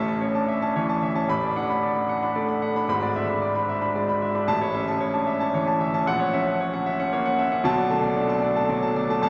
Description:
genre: classical, virtuoso piano study.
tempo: 75 BPM (dotted quarters).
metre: 6/8.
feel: rubato.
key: A major.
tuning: A4 = 440 Hz.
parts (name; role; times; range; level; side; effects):
clear concert grand piano; solo; 0.0-9.3 s; E1 to B5; -24 LUFS; equal; none.
room: wet cathedral reverb, RT60 5.9 s.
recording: nothing above 7.9 kHz.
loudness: -24 LUFS.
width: mono.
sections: 0.0-9.3 A section.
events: none.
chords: 0.0 A; 1.3 Bm7/A; 2.9 E7/G#; 4.5 A; 6.1 F#7/A#; 7.7 Bm7.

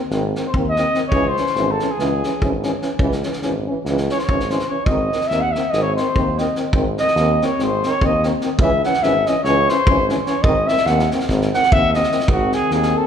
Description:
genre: balkan folk, Balkan brass band.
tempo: 290 BPM (eighths).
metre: 9/8.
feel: straight.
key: unclear.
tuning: A4 = 440 Hz.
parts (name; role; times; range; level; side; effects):
clear euphonium; accompaniment; 0.1-13.1 s; B#3 to C#4; -24 LUFS; left 3 dB; none.
clear trombone; accompaniment; 0.1-13.1 s; D#3 to E3; -27 LUFS; right 6 dB; none.
warm tuba; bass; 0.1-12.9 s; G#1 to D#2; -23 LUFS; equal; none.
warm soul drum kit; percussion; 0.1-12.9 s; kick drum, snare drum; -23 LUFS; equal; none.
dark cornet; melody; 0.5-13.1 s; F#4 to F#5; -19 LUFS; equal; none.
room: moderate concert hall reverb, RT60 2.2 s.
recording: minimal, uncompressed stereo recording.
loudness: -16 LUFS.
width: side -8 dB against mid.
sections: 0.0-12.3 A section.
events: cornet solo 0.0-12.3.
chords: 0.0 G#; 1.1 C#m; 4.9 G#; 8.6 C#m; 10.4 G#.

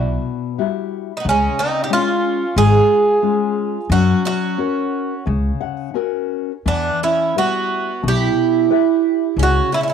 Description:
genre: fado-style ballad.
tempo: 89 BPM.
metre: 4/4.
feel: rubato.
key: unclear.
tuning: A4 = 440 Hz.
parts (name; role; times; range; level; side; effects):
nylon-string guitar; accompaniment; 0.0-9.9 s; B2 to F#5; -22 LUFS; left 13 dB; none.
upright bass; bass; 0.0-9.6 s; G#1 to F#2; -18 LUFS; left 1 dB; transformer saturation.
Irish bouzouki; melody; 1.2-9.9 s; C#4 to G#4; -18 LUFS; right 2 dB; none.
picked twelve-string acoustic guitar; second line; 1.2-9.9 s; G#3 to E#4; -22 LUFS; right 14 dB; none.
room: wet spring reverb, RT60 1.2 s, small room ambience.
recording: 1960s-style stereo with parts hard left and right.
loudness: -15 LUFS.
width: side -7 dB against mid.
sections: 0.0-9.9 A section.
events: nylon-string guitar fill 5.3-6.7.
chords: 0.0 Emadd9/B; 1.2 C#; 3.9 F#; 6.7 Em; 9.4 N.C..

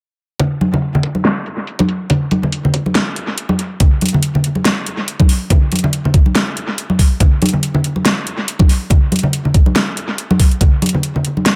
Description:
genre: dubstep.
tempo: 141 BPM.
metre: 4/4.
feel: swing 56% on 16ths, half-time.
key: none.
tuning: none.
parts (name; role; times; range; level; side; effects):
dubstep drum kit; drums; 0.4-11.6 s; hi-hat, snare drum; -20 LUFS; equal; low-pass filter on hats, low-pass filter on snare, analog delay.
electronic kick drum; drums; 0.4-10.7 s; none; -13 LUFS; equal; high-pass filter on kick.
congas; percussion; 0.4-11.4 s; none; -19 LUFS; equal; analog delay.
room: light reverb, digital ambience.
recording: echo-heavy mix.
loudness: -15 LUFS.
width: mono.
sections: 0.4-3.8 A section; 3.8-11.6 B section.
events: filter sweep on drum 0.4-3.8; break 3.0-3.8.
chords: none.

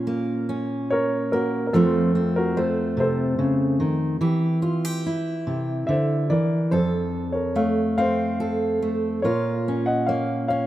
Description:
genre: acoustic folk-pop ballad.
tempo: 48 BPM (dotted quarters).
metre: 6/8.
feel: straight.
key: Bb harmonic minor.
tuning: A4 = 439 Hz.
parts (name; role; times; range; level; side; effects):
fingerpicked steel-string acoustic guitar; accompaniment; 0.0-10.7 s; F2 to A4; -22 LUFS; equal; none.
warm grand piano; melody; 0.9-10.7 s; F4 to Gb5; -25 LUFS; equal; none.
room: moderate plate reverb, RT60 2.8 s.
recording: rough home demo mix.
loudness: -20 LUFS.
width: side -14 dB against mid.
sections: 0.0-10.7 A section.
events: none.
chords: 0.0 Bbm; 1.7 F; 4.2 C/E; 6.7 F; 9.2 Bbm.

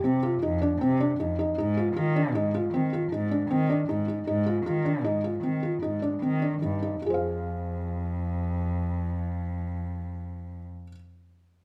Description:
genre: contemporary instrumental, contemporary.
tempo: 148-156 BPM.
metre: 7/4.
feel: straight.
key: F dorian.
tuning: A4 = 440 Hz.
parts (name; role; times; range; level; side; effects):
felt-muted upright piano; arpeggios; 0.0-11.0 s; C4 to F5; -30 LUFS; equal; none.
muted cello; bass; 0.0-10.6 s; F2 to Eb3; -31 LUFS; equal; none.
room: light reverb.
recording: none.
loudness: -28 LUFS.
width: mono.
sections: 0.0-7.0 A section; 7.0-9.9 B section.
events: slowing down 3.9-7.0.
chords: 0.0 F5; 1.6 Ab5; 7.0 Fm.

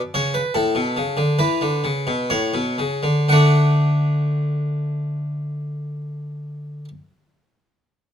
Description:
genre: classical, baroque-style two-part invention for harpsichord.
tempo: 57-77 BPM.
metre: 3/4.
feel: straight.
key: D major.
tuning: A4 = 440 Hz.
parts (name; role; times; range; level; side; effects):
harpsichord; solo; 0.1-6.9 s; A2 to F#5; -19 LUFS; equal; none.
room: light reverb.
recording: none.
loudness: -18 LUFS.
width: side -9 dB against mid.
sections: 0.0-3.3 A section; 3.3-8.1 B section.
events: slowing down 0.0-3.3.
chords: 0.0 Bsus2; 0.5 D5/A; 2.3 A; 3.3 D.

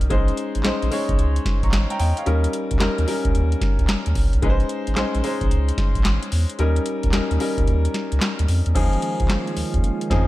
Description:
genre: R&B, new jack swing.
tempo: 111 BPM.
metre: 4/4.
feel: swing 65% on 16ths.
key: unclear.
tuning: A4 = 440 Hz.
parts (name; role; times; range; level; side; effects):
clear concert grand piano; accompaniment; 0.0-10.3 s; F3 to Db6; -24 LUFS; left 2 dB; none.
round analog bass; bass; 0.0-10.3 s; Ab1 to F2; -21 LUFS; equal; none.
booming analog drum machine; drums; 0.0-10.3 s; crash cymbal, handclaps, hi-hat, kick drum, snare drum; -22 LUFS; equal; gated reverb.
brassy analog pad; sustained chords; 8.8-10.3 s; Eb3 to F4; -28 LUFS; right 4 dB; chorus.
room: digital ambience.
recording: none.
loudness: -18 LUFS.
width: side -16 dB against mid.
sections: 0.0-8.8 A section; 8.8-10.3 B section.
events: kick muted 7.7-8.8.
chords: 0.1 Bbm11; 2.3 Eb7; 4.4 Bbm11; 6.6 Eb7; 8.8 Eb9sus4.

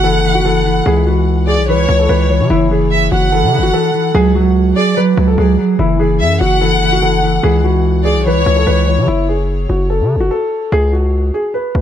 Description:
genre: hip hop.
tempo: 146 BPM.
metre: 4/4.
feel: half-time.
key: F# minor.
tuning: A4 = 440 Hz.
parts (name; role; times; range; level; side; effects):
dark concert grand piano; melody; 0.0-11.8 s; E4 to C#5; -17 LUFS; left 1 dB; none.
warm studio violin section; second line; 0.0-9.0 s; C#5 to F#5; -18 LUFS; left 1 dB; ping-pong delay.
mellow electric guitar; accompaniment; 0.0-9.1 s; E3 to F#3; -16 LUFS; right 2 dB; none.
distorted 808-style bass; bass; 0.0-11.8 s; F#1 to C#3; -15 LUFS; equal; distortion.
room: little or no reverb.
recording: none.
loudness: -11 LUFS.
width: side -10 dB against mid.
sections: 0.0-9.1 A section; 9.1-11.8 B section.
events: none.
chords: 0.0 F#m7; 0.9 C#m7; 2.5 F#m7; 4.1 C#sus4; 5.8 F#m7; 7.4 C#m7; 9.1 F#m; 10.7 C#sus4.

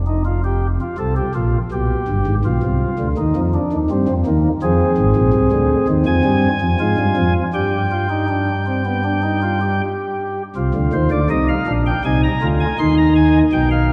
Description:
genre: classical, baroque-style 3-part fugue for pipe organ.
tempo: 81 BPM.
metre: 4/4.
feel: straight.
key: C minor.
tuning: A4 = 440 Hz.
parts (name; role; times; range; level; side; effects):
pipe organ, flutes; solo; 0.0-13.9 s; F1 to C6; -17 LUFS; equal; none.
room: wet church reverb, RT60 2.8 s.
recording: none.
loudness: -18 LUFS.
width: mono.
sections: 0.0-10.6 A section; 10.6-13.9 B section.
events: none.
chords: 0.2 Bb5/F; 1.7 G7; 3.2 Cm/Eb; 4.6 Fm; 7.5 G5; 10.6 Cm; 12.1 Ab/C.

